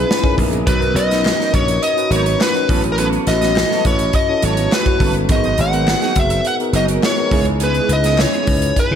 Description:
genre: polished 1980s jazz-funk pop.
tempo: 104 BPM.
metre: 4/4.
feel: straight.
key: unclear.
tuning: A4 = 445 Hz.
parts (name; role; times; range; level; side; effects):
smooth overdriven lead guitar; melody; 0.0-9.0 s; A#4 to F#5; -18 LUFS; left 1 dB; slapback echo.
mellow tine electric piano; accompaniment; 0.0-9.0 s; A#3 to A#5; -22 LUFS; left 3 dB; overdrive, analog chorus, slapback echo.
mellow electric guitar; riff; 0.0-8.9 s; E3 to B4; -24 LUFS; right 7 dB; ensemble chorus, slapback echo.
slap bass; bass; 0.0-9.0 s; F#1 to C#3; -19 LUFS; equal; none.
modern studio drum kit; drums; 0.1-8.9 s; hi-hat, kick drum, snare drum; -20 LUFS; equal; none.
group handclap; percussion; 1.2-8.3 s; none; -34 LUFS; left 9 dB; none.
room: moderate lush hall reverb, RT60 2.2 s.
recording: big arena sound.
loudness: -14 LUFS.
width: side -8 dB against mid.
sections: 0.0-9.0 A section.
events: none.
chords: 0.0 C#m7; 0.7 Bmaj7; 2.7 A69; 5.3 G#m7; 7.3 C#m7.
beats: 0.09 | 0.67 1.25 1.83 2.40 | 2.98 3.56 4.14 4.72 | 5.30 5.87 6.45 7.03 | 7.61 8.19 8.76.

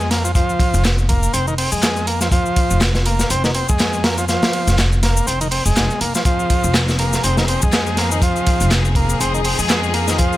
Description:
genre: breakbeat, breaks.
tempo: 122 BPM.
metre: 4/4.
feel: swing 57% on 16ths.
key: F minor.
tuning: A4 = 440 Hz.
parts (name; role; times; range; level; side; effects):
overdriven combo organ; riff; 0.0-10.4 s; Eb3 to C4; -20 LUFS; equal; vintage 12-bit sampler grit, digital delay.
upright bass; bass; 0.0-10.2 s; F1 to F2; -19 LUFS; equal; none.
house drum kit; drums; 0.0-10.4 s; handclaps, ride cymbal, shaker; -25 LUFS; left 1 dB; none.
crunchy breakbeat drum kit; drums; 0.1-10.3 s; hi-hat, kick drum, snare drum; -19 LUFS; equal; none.
clear symphonic string section; sustained chords; 6.2-10.4 s; F3 to Ab4; -24 LUFS; left 4 dB; sidechain pumping.
room: studio ambience.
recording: none.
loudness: -14 LUFS.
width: side -15 dB against mid.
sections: 0.0-10.4 A section.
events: none.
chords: 0.0 Fm7.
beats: | 0.35 0.84 1.34 1.83 | 2.32 2.81 3.30 3.80 | 4.29 4.78 5.27 5.76 | 6.25 6.75 7.24 7.73 | 8.22 8.71 9.21 9.70 | 10.19.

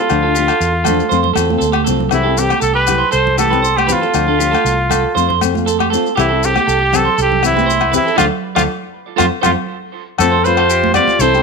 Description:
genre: highlife guitar band.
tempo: 119 BPM.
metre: 4/4.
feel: straight.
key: unclear.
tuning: A4 = 441 Hz.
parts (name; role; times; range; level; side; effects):
clear trumpet; melody; 0.0-11.4 s; E4 to D5; -16 LUFS; equal; none.
semi-hollow electric guitar; arpeggios; 0.0-11.4 s; F4 to D5; -19 LUFS; right 13 dB; tape echo.
nylon-string guitar; accompaniment; 0.1-11.4 s; E3 to G4; -20 LUFS; left 13 dB; none.
fingered electric bass; bass; 0.1-11.4 s; C2 to F2; -20 LUFS; equal; none.
agogo bells; percussion; 0.1-11.1 s; none; -21 LUFS; left 16 dB; none.
maracas; percussion; 0.1-11.4 s; none; -26 LUFS; left 18 dB; none.
congas; percussion; 0.9-11.2 s; none; -23 LUFS; right 14 dB; none.
breathy trumpet; second line; 10.2-11.4 s; C4 to F4; -21 LUFS; left 14 dB; none.
room: moderate echo chamber reverb, RT60 1.4 s, studio reverb.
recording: 1960s-style stereo with parts hard left and right.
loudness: -12 LUFS.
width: side -4 dB against mid.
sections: 0.0-10.2 A section; 10.2-11.4 B section.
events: drum fill 1.6-2.1; band accent 8.2-10.2.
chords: 0.1 Dm; 1.1 F; 2.1 C; 4.1 Dm; 5.1 F; 6.2 C; 8.2 Dm; 9.2 F.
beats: | 0.10 0.60 1.11 1.61 | 2.12 2.62 3.13 3.63 | 4.14 4.64 5.15 5.65 | 6.16 6.66 7.17 7.67 | 8.18 8.68 9.19 9.69 | 10.20 10.70 11.21.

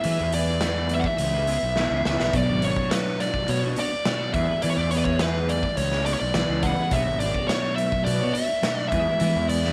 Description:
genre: psychedelic rock.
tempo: 105 BPM.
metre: 4/4.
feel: straight.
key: unclear.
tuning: A4 = 441 Hz.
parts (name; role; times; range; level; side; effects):
fuzz lead guitar; melody; 0.0-9.7 s; B4 to F#5; -28 LUFS; equal; distortion, slapback echo.
twelve-string electric guitar; riff; 0.0-9.7 s; E2 to C#5; -30 LUFS; equal; rotary speaker, double-tracked.
fuzz fingered electric bass; bass; 0.0-9.7 s; G#1 to E3; -30 LUFS; equal; overdrive.
raw garage drum kit; drums; 0.0-9.7 s; hi-hat, kick drum, snare drum; -31 LUFS; equal; none.
room: moderate echo chamber reverb, RT60 1.8 s, small room ambience.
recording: none.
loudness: -24 LUFS.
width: mono.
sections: 0.0-9.7 A section.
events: drum fill 1.8-2.3.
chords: 0.0 E; 2.3 Bmadd9; 4.3 E; 6.9 Bmadd9; 8.9 E.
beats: | 0.05 0.62 1.20 1.77 | 2.34 2.92 3.49 4.06 | 4.63 5.21 5.78 6.35 | 6.92 7.50 8.07 8.64 | 9.21.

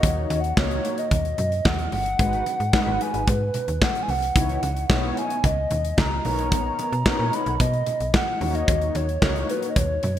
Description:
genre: early-eighties boogie funk.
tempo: 111 BPM.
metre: 4/4.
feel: straight.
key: unclear.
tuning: A4 = 441 Hz.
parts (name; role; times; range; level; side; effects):
hollow clarinet-like synth lead; melody; 0.0-10.2 s; B4 to B5; -26 LUFS; equal; chorus.
mellow synth brass; accompaniment; 0.0-9.7 s; G#3 to C#5; -30 LUFS; left 2 dB; chorus.
slap-like FM bass; bass; 0.0-10.2 s; G1 to B2; -26 LUFS; equal; none.
modern studio drum kit; drums; 0.0-10.2 s; handclaps, hi-hat, kick drum, snare drum; -23 LUFS; equal; gated reverb.
congas; percussion; 0.0-10.2 s; none; -35 LUFS; right 2 dB; none.
room: light reverb, small room ambience.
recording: bright 1980s-style digital production.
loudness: -20 LUFS.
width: side -11 dB against mid.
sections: 0.0-10.2 A section.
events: none.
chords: 0.0 D#m7; 2.2 G#m7; 4.4 C#m9; 6.2 Bmaj9; 8.4 D#m7.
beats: | 0.03 0.57 1.11 1.65 | 2.19 2.73 3.28 3.82 | 4.36 4.90 5.44 5.98 | 6.52 7.06 7.60 8.14 | 8.68 9.22 9.76.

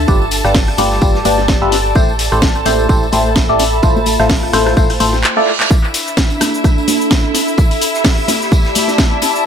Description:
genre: piano house.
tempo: 128 BPM.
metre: 4/4.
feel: swing 56% on 16ths.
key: unclear.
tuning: A4 = 440 Hz.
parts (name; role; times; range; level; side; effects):
muted studio violin section; sustained chords; 0.0-9.5 s; E4 to A5; -22 LUFS; equal; sidechain pumping.
solid FM bass; bass; 0.0-5.2 s; G1 to A1; -19 LUFS; equal; tube saturation, sidechain pumping.
warbly tape-like pad; texture; 0.0-9.5 s; D4 to B5; -20 LUFS; right 1 dB; chorus, built-in reverb, sidechain pumping.
barking FM electric piano; riff; 0.1-5.5 s; G3 to E5; -16 LUFS; left 1 dB; phaser, sidechain pumping, low-pass filter, analog delay.
electronic kick drum; drums; 0.1-9.1 s; none; -13 LUFS; equal; none.
loose indie drum kit; drums; 0.1-9.3 s; hi-hat, snare drum, tambourine; -28 LUFS; equal; high-pass filter on hats, high-pass filter on snare, high-pass filter on perc, high-pass filter on room.
tambourine and congas; percussion; 0.1-9.4 s; none; -24 LUFS; left 4 dB; analog delay.
house drum kit; drums; 0.3-9.4 s; handclaps, hi-hat, rim click, shaker, snare drum; -18 LUFS; left 1 dB; analog delay.
reverse cymbal; sound effects; 5.0-5.7 s; none; -21 LUFS; right 7 dB; none.
room: light reverb, small room ambience.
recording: echo-heavy mix.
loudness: -11 LUFS.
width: side -8 dB against mid.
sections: 0.0-5.7 A section; 5.7-9.5 A section.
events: reverse cymbal 5.0-5.7; drum fill 5.2-5.7.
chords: 0.1 G7; 2.0 Am7; 3.8 Fmaj7/A; 5.7 D5.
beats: | 0.08 0.55 1.02 1.49 | 1.96 2.42 2.89 3.36 | 3.83 4.30 4.77 5.24 | 5.71 6.17 6.64 7.11 | 7.58 8.05 8.52 8.99 | 9.46.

